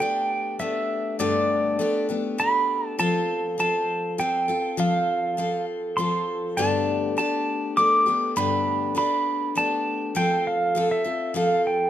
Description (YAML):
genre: country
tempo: 100 BPM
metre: 3/4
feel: straight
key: G mixolydian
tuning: A4 = 440 Hz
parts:
  - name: pedal steel guitar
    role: melody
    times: 0.0-11.9 s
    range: D5 to D6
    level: -23 LUFS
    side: right 1 dB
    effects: none
  - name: picked steel-string acoustic guitar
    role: accompaniment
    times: 0.0-11.9 s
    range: G2 to A4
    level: -25 LUFS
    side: left 2 dB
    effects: none
room: light reverb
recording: close, detailed microphones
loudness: -21 LUFS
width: side -11 dB against mid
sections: 0.0-11.9 A section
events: none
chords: 0.0 Gadd9; 3.0 F; 6.6 Gadd9; 10.2 F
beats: 0.01 0.60 | 1.20 1.80 2.40 | 2.99 3.59 4.19 | 4.78 5.38 5.98 | 6.58 7.17 7.77 | 8.37 8.97 9.56 | 10.16 10.76 11.36